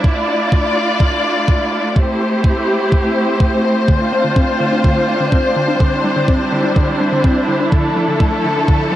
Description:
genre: italo disco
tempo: 125 BPM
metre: 4/4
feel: straight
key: F major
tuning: A4 = 441 Hz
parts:
  - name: warm symphonic string section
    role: sustained chords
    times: 0.0-9.0 s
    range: F3 to D5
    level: -15 LUFS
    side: equal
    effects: none
  - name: electronic hi-hat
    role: drums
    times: 0.0-9.0 s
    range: none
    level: barely audible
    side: none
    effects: none
  - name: electronic kick drum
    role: drums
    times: 0.0-8.8 s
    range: none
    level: -14 LUFS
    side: equal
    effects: none
  - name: warbly dusty pluck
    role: arpeggios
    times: 3.9-9.0 s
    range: D3 to D4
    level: -20 LUFS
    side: left 2 dB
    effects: chorus, tape echo
room: light reverb, digital ambience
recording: dry, gritty hardware recording, cassette tape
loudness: -13 LUFS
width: side -13 dB against mid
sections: 0.0-9.0 A section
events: none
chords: 0.0 Dmadd9; 2.0 Am7; 3.9 F6; 5.8 Cadd9; 7.7 Dmadd9

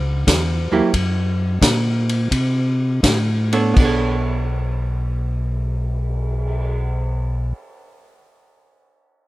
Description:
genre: soul jazz organ trio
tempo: 80-92 BPM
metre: 4/4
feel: swing 67% on 8ths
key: B minor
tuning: A4 = 437 Hz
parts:
  - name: mellow tonewheel organ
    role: bass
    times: 0.0-7.5 s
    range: B1 to C3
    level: -20 LUFS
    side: equal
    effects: chorus vibrato, slow rotary speaker
  - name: vintage drum kit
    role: drums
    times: 0.3-6.6 s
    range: crash cymbal, cymbal swell, hi-hat, kick drum, ride cymbal, snare drum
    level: -21 LUFS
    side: equal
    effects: none
  - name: archtop guitar, miked and amplified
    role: accompaniment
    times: 0.7-7.7 s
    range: F#3 to C#5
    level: -22 LUFS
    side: right 3 dB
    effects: none
room: small room ambience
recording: rough home demo mix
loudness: -17 LUFS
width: side -18 dB against mid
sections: 0.0-3.8 A section; 3.8-6.8 B section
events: slowing down 0.0-3.8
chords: 0.0 C#dim; 0.9 F#; 2.3 Csus2; 3.8 Bm9

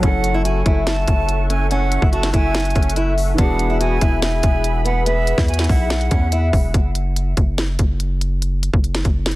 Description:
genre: hip hop, trap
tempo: 143 BPM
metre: 4/4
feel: half-time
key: unclear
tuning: A4 = 436 Hz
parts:
  - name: fingerpicked old ladder-braced acoustic guitar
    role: melody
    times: 0.0-6.5 s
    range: B3 to F#4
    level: -24 LUFS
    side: left 1 dB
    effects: low-pass filter, tape echo
  - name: reedy concert flute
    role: second line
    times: 0.0-6.7 s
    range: E5 to A5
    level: -26 LUFS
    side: right 4 dB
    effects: tape echo
  - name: dark baby grand piano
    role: accompaniment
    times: 0.0-6.8 s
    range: E3 to A4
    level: -28 LUFS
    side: equal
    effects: none
  - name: warm analog pad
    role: sustained chords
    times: 0.0-6.7 s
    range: G#4 to C#6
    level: -30 LUFS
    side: left 1 dB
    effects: chorus
  - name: long sustained 808-style bass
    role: bass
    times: 0.0-9.4 s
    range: E1 to E2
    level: -20 LUFS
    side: equal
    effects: none
  - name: trap drum kit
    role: drums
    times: 0.0-9.4 s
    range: hi-hat, kick drum, snare drum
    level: -18 LUFS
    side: equal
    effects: none
room: small room ambience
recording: dense, heavily limited modern master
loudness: -16 LUFS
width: side -18 dB against mid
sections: 0.0-6.7 A section; 6.7-9.4 B section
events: filter sweep on steel-string acoustic guitar 6.7-9.4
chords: 0.0 F#m7; 3.4 Eadd9; 6.7 N.C.

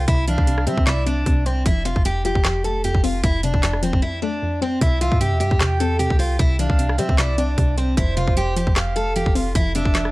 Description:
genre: hip hop, trap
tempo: 152 BPM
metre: 4/4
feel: half-time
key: C major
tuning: A4 = 438 Hz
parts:
  - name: picked steel-string acoustic guitar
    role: melody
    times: 0.0-10.1 s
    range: C4 to A4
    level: -24 LUFS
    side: equal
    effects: low-pass filter
  - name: breathy flute-like synth lead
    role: second line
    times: 0.0-1.2, 4.8-10.1 s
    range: C5 to G5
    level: -30 LUFS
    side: right 3 dB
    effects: chorus, tremolo, tape echo
  - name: warbly dusty pluck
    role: accompaniment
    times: 0.0-10.1 s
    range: F2 to C5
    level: -25 LUFS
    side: left 1 dB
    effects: chorus, low-pass filter
  - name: clean 808-style bass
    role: bass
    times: 0.0-10.1 s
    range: F1 to G3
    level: -22 LUFS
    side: equal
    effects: none
  - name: trap drum kit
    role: drums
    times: 0.1-10.1 s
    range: handclaps, hi-hat, kick drum, rim click, snare drum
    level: -21 LUFS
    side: equal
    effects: none
room: digital ambience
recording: none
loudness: -17 LUFS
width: side -19 dB against mid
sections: 0.0-10.1 A section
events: break 4.0-4.8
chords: 0.0 C; 1.7 F; 4.8 C; 8.0 F

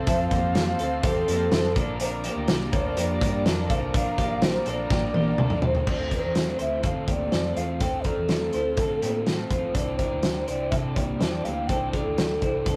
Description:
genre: jangly indie pop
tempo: 124 BPM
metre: 4/4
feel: straight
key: D minor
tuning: A4 = 440 Hz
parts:
  - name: bright round clay ocarina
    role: melody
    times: 0.0-12.8 s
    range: A4 to G5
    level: -31 LUFS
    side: equal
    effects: none
  - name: combo organ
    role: accompaniment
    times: 0.0-5.6 s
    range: C4 to D5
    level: -38 LUFS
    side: equal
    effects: none
  - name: raw garage guitar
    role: accompaniment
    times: 0.0-12.8 s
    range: Bb2 to Bb4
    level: -36 LUFS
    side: equal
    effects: overdrive
  - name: twelve-string electric guitar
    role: arpeggios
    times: 0.0-12.8 s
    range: A3 to C5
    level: -35 LUFS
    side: equal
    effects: tremolo
  - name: hollow-body short-scale fingered electric bass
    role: bass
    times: 0.0-12.8 s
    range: A1 to D3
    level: -34 LUFS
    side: equal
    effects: none
  - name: loose indie drum kit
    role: drums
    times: 0.1-12.8 s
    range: crash cymbal, hi-hat, kick drum, snare drum, toms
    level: -28 LUFS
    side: equal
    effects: none
room: moderate studio ambience, RT60 0.5 s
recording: rough rehearsal-room recording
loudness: -25 LUFS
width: mono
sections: 0.0-5.9 A section; 5.9-12.8 B section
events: drum fill 4.9-5.9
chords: 0.0 F; 1.8 Bb; 5.9 Dm7; 9.8 Cadd9

